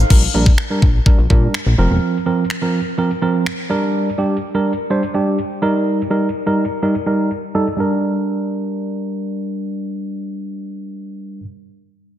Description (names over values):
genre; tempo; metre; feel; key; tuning
dance-pop; 125 BPM; 4/4; straight; Bb major; A4 = 440 Hz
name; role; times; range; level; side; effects
chorused synth bass; bass; 0.0-2.0 s; E1 to Bb2; -15 LUFS; left 1 dB; sidechain pumping
tine electric piano; accompaniment; 0.1-11.4 s; F3 to C5; -18 LUFS; right 1 dB; sidechain pumping, low-pass filter
pop drum kit; drums; 0.1-3.6 s; crash cymbal, finger snaps, kick drum; -15 LUFS; left 1 dB; soft clipping on snare
room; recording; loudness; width
light reverb, digital ambience; dense, heavily limited modern master; -15 LUFS; side -11 dB against mid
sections
0.1-7.8 A section; 7.8-11.6 B section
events
filter sweep on tine electric piano 0.1-7.8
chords
0.1 Bb6; 1.8 Fsus4; 3.7 Bb6; 5.6 Eb; 7.8 Bb6